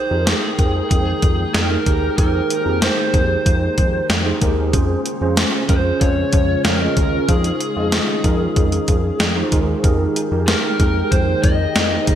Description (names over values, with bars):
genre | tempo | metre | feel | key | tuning
1980s-style pop | 94 BPM | 4/4 | straight | F minor | A4 = 440 Hz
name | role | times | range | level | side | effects
lead guitar through a small cranked amp | melody | 0.0-12.2 s | Ab4 to Eb5 | -22 LUFS | equal | overdrive, digital delay
mellow tine electric piano | accompaniment | 0.0-12.2 s | Db4 to G5 | -22 LUFS | right 2 dB | ensemble chorus
glassy FM pad | sustained chords | 0.2-12.2 s | Db3 to G5 | -27 LUFS | equal | ensemble chorus, built-in reverb
fat analog bass | bass | 0.1-12.2 s | Eb2 to F2 | -21 LUFS | equal | none
gated 80s digital drum machine | drums | 0.3-12.2 s | hi-hat, kick drum, snare drum | -18 LUFS | equal | gated reverb, gated reverb snare
room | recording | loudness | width
moderate lush hall reverb, RT60 1.8 s, digital ambience | bright 1980s-style digital production | -15 LUFS | side -10 dB against mid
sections
0.0-12.2 A section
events
none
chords
0.0 Fm11; 4.7 Dbmaj7/F; 9.8 Fm11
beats
0.27 0.91 1.54 | 2.18 2.82 3.46 4.10 | 4.74 5.37 6.01 6.65 | 7.29 7.93 8.56 9.20 | 9.84 10.48 11.12 11.76